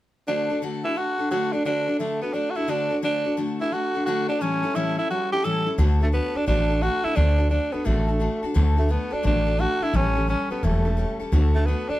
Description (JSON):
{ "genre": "rockabilly", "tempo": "174 BPM", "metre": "4/4", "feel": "swing 65% on 8ths", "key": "D major", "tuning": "A4 = 441 Hz", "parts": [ { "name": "growling tenor saxophone", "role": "melody", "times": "0.3-12.0 s", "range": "A3 to A4", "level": "-25 LUFS", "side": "right 1 dB", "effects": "none" }, { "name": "picked steel-string acoustic guitar", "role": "accompaniment", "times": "0.3-12.0 s", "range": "A2 to A4", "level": "-27 LUFS", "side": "left 2 dB", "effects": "none" }, { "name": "upright bass", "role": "bass", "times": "5.8-11.9 s", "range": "E1 to D2", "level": "-21 LUFS", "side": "equal", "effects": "none" } ], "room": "moderate stone room reverb, RT60 1.1 s", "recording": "band playing live in one room", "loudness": "-21 LUFS", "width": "side -15 dB against mid", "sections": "0.3-5.8 A section; 5.8-12.0 B section", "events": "none", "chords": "0.3 D; 4.4 A7; 5.8 D; 9.9 A7; 11.3 D" }